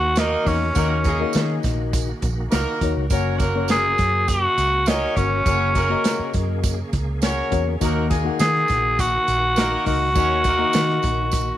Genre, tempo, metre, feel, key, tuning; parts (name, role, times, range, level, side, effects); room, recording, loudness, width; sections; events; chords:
uptempo 1960s-style soul; 102 BPM; 4/4; straight; A4 = 440 Hz
raspy tenor saxophone; melody; 0.0-11.6 s; C#4 to G#4; -20 LUFS; equal
bright tonewheel organ; sustained chords; 0.0-11.6 s; C#3 to G#4; -34 LUFS; right 1 dB; slow rotary speaker, chorus vibrato
vintage muted fingered electric bass; bass; 0.0-11.5 s; F#1 to D#3; -24 LUFS; right 1 dB
warm horn section; second line; 0.2-11.0 s; G#3 to C#5; -28 LUFS; right 1 dB; tape echo
warm soul drum kit; drums; 0.2-11.5 s; hi-hat, kick drum, snare drum; -24 LUFS; right 1 dB
tambourine; percussion; 0.2-11.5 s; -37 LUFS; right 17 dB
reed electric piano; accompaniment; 0.4-11.5 s; D#3 to F#5; -27 LUFS; left 11 dB; overdrive
small room ambience; 1960s-style stereo with parts hard left and right; -18 LUFS; side -12 dB against mid
0.0-11.6 A section
0.0 D#m; 3.1 F#; 7.8 D#m